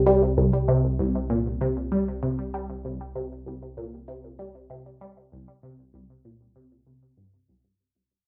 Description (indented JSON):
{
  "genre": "ambient, sequencer-driven space music",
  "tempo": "97 BPM",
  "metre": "4/4",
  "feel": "straight",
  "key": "unclear",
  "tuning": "A4 = 440 Hz",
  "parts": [
    { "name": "resonant blip pluck", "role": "riff", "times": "0.0-7.6 s", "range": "C2 to G3", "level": "-26 LUFS", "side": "equal", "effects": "phaser, cassette tape, delay" },
    { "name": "analog drone", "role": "bass", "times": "0.0-7.8 s", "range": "C2", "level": "-33 LUFS", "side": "equal", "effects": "chorus, tube saturation" }
  ],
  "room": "wet studio reverb, RT60 0.6 s",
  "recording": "home recording on cassette",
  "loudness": "-25 LUFS",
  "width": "mono",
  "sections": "0.0-7.8 A section",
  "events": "fade-out on synth arpeggio sound 0.0-7.8; fade-out on synth drone 0.0-7.8; fade-out 0.0-7.8",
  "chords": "0.0 C5"
}